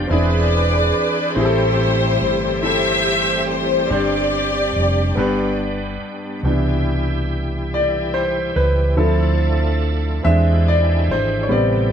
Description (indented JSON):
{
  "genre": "slow gospel",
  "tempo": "47 BPM (dotted quarters)",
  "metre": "6/8",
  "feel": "straight",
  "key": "C major",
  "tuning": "A4 = 445 Hz",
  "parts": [
    { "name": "warm studio string section", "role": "melody", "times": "0.0-5.6 s", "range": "E4 to E5", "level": "-19 LUFS", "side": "left 1 dB", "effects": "none" },
    { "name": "clear concert grand piano", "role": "accompaniment", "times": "0.0-11.9 s", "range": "G2 to E5", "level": "-21 LUFS", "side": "left 1 dB", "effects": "none" },
    { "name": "bright tonewheel organ", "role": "sustained chords", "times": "0.0-11.9 s", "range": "C3 to B4", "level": "-25 LUFS", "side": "right 1 dB", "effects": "overdrive, chorus vibrato, slow rotary speaker" },
    { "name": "hollow-body short-scale fingered electric bass", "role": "bass", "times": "0.0-11.9 s", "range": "E1 to E2", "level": "-20 LUFS", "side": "equal", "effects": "none" }
  ],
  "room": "moderate studio reverb, RT60 0.6 s",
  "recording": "band playing live in one room",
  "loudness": "-16 LUFS",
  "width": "side -8 dB against mid",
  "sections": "0.0-6.4 A section; 6.4-11.9 B section",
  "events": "grand piano solo 6.4-11.9",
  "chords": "0.1 E7b13; 1.4 Am7; 3.9 Gsus4; 5.2 G; 6.4 Cmaj7; 9.0 Dm7; 10.2 E7alt",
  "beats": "0.10 | 1.36 2.63 | 3.90 5.17 | 6.43 7.70 | 8.97 10.24 | 11.50"
}